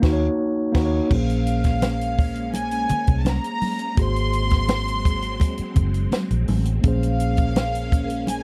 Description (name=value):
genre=lush 1970s-style soul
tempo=84 BPM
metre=4/4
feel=straight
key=Bb minor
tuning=A4 = 440 Hz
part: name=mellow tine electric piano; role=accompaniment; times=0.0-8.4 s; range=Bb3 to Db5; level=-28 LUFS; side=equal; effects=none
part: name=vintage muted fingered electric bass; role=bass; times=0.0-8.4 s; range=Gb1 to Eb2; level=-26 LUFS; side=equal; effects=none
part: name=compact cocktail drum kit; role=drums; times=0.0-8.4 s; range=crash cymbal, hi-hat, kick drum, snare drum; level=-24 LUFS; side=equal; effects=none
part: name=warm studio violin section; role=melody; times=1.1-8.4 s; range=F5 to C6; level=-30 LUFS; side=equal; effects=none
part: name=phased string machine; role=sustained chords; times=1.1-8.4 s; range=Gb3 to Db4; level=-35 LUFS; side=equal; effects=ensemble chorus, phaser
part: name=congas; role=percussion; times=1.1-8.4 s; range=none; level=-30 LUFS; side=equal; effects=none
room=little or no reverb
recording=dry, close 1970s-style studio recording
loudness=-22 LUFS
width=mono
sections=0.0-1.1 A section; 1.1-8.4 B section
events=band accent 0.0-1.1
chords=0.0 Ebm7; 1.1 Bbm9; 4.0 Ab9; 6.8 Bbm9